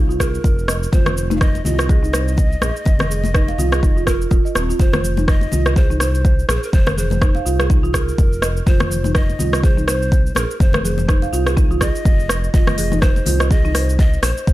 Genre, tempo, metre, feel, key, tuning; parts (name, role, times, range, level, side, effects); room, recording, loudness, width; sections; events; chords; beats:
afro house; 124 BPM; 4/4; swing 57% on 16ths; F minor; A4 = 440 Hz
folk marimba with medium mallets; arpeggios; 0.0-13.9 s; C4 to F5; -25 LUFS; right 3 dB; sidechain pumping, low-pass filter, tape echo
smooth synth bass; bass; 0.0-14.5 s; Eb1 to C2; -21 LUFS; equal; sidechain pumping
afro-pop drum kit; drums; 0.1-14.5 s; cabasa, hi-hat, rim click, toms; -22 LUFS; equal
breathy mellow large pan pipes; melody; 0.2-14.5 s; Bb4 to F5; -28 LUFS; left 1 dB; tape echo
electronic kick drum; drums; 0.2-14.5 s; -15 LUFS; equal
congas; percussion; 0.2-14.5 s; -26 LUFS; left 3 dB
small room ambience; -14 LUFS; side -16 dB against mid
0.0-14.5 A section
filter sweep on marimba 0.0-14.5
0.0 F7(no3)
0.44 | 0.93 1.41 1.89 2.38 | 2.86 3.34 3.83 4.31 | 4.80 5.28 5.76 6.25 | 6.73 7.21 7.70 8.18 | 8.67 9.15 9.63 10.12 | 10.60 11.09 11.57 12.05 | 12.54 13.02 13.51 13.99 | 14.47